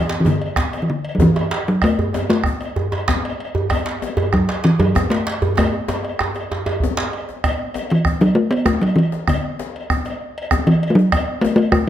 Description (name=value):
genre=west african traditional, West African drum ensemble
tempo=129 BPM (dotted quarters)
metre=12/8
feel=straight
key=unclear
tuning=A4 = 441 Hz
part: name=talking drum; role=melody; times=0.0-11.9 s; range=D3 to B3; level=-16 LUFS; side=equal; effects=none
part: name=djembe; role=percussion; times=0.1-7.1 s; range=none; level=-22 LUFS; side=right 2 dB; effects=none
part: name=bombo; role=percussion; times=0.3-11.9 s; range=none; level=-22 LUFS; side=right 2 dB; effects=none
part: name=cowbell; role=percussion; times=0.3-11.7 s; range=none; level=-29 LUFS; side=left 2 dB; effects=none
part: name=djembe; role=percussion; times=0.3-11.9 s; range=none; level=-28 LUFS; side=left 6 dB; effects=none
room=light reverb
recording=close, detailed microphones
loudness=-16 LUFS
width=side -11 dB against mid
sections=0.0-7.4 A section; 7.4-11.9 B section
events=speeding up 0.0-11.9; drum fill 5.6-7.4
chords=none